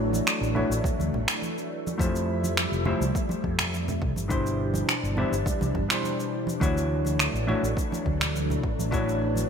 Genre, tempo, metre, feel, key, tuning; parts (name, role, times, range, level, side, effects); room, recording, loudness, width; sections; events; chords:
sunset chillout; 104 BPM; 4/4; straight; D major; A4 = 443 Hz
hollow-body jazz guitar; accompaniment; 0.0-9.5 s; B2 to C#5; -30 LUFS; moving between left 4 dB and right 3 dB; auto-pan, vintage 12-bit sampler grit, low-pass filter, ping-pong delay
soft string machine; sustained chords; 0.0-9.5 s; E3 to E5; -31 LUFS; equal; phaser, ensemble chorus
mellow fretless electric bass; bass; 0.0-9.4 s; F1 to F2; -28 LUFS; equal; ensemble chorus
electronic shaker and finger snaps; drums; 0.1-9.5 s; -29 LUFS; equal; gated reverb
congas; percussion; 0.1-9.5 s; -36 LUFS; right 4 dB
electronic kick drum; drums; 0.8-9.0 s; -29 LUFS; equal
moderate lush hall reverb, RT60 2.0 s, digital ambience; bright 1980s-style digital production; -24 LUFS; side -7 dB against mid
0.0-9.5 A section
filter sweep on hollow-body jazz guitar 0.0-9.5
0.0 Dmaj9; 2.0 Fmaj9; 4.0 Cmaj9; 6.6 Dmaj9